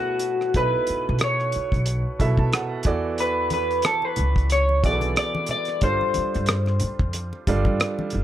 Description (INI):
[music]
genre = R&B, neo-soul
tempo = 91 BPM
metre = 4/4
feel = swing 57% on 16ths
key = unclear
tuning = A4 = 441 Hz
[part]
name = electric guitar through a small old amp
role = melody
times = 0.0-8.1 s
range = F#4 to D5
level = -24 LUFS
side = left 1 dB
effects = analog chorus, plate reverb
[part]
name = clear upright piano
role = accompaniment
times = 0.0-8.2 s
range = B2 to B5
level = -28 LUFS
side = right 4 dB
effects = plate reverb
[part]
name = cloth-damped thuddy drum kit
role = drums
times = 0.2-8.2 s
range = hi-hat, kick drum, rim click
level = -24 LUFS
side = equal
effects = none
[part]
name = upright bass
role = bass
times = 0.6-8.2 s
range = F#1 to B2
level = -24 LUFS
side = equal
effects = none
[part]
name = congas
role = percussion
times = 3.5-8.2 s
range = none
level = -34 LUFS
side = left 2 dB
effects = none
[sound]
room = light reverb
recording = none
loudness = -20 LUFS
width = side -12 dB against mid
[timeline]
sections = 0.0-8.2 A section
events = upright piano fill 1.9-3.2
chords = 0.0 B9sus4; 2.9 E9sus4; 5.8 G9sus4